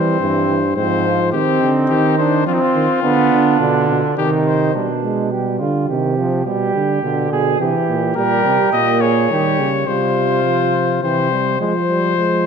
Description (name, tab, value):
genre	classical, imitative canzona for brass ensemble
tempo	105 BPM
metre	3/4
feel	straight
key	unclear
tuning	A4 = 440 Hz
part	warm trumpet	melody	0.0-4.7, 8.2-12.5 s	Eb4 to Eb5	-19 LUFS	left 10 dB	none
part	mellow flugelhorn	second line	0.0-11.6 s	C4 to Ab4	-21 LUFS	right 6 dB	none
part	warm trombone	accompaniment	0.0-12.5 s	D3 to D4	-19 LUFS	right 2 dB	none
part	dark euphonium	bass	0.0-12.5 s	G2 to F3	-20 LUFS	right 2 dB	none
room	moderate concert hall reverb, RT60 2.0 s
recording	dark, warm production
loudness	-14 LUFS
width	side -6 dB against mid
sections	0.0-4.8 A section; 4.8-11.6 B section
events	none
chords	0.0 C; 0.8 Fm/Ab; 1.3 Cm; 2.5 F5; 3.0 Bdim; 4.2 Cm; 4.8 G/B; 5.9 Cm; 6.5 G/B; 7.6 C; 8.2 Gdim/Bb; 9.9 Csus4; 11.0 C; 11.6 Fm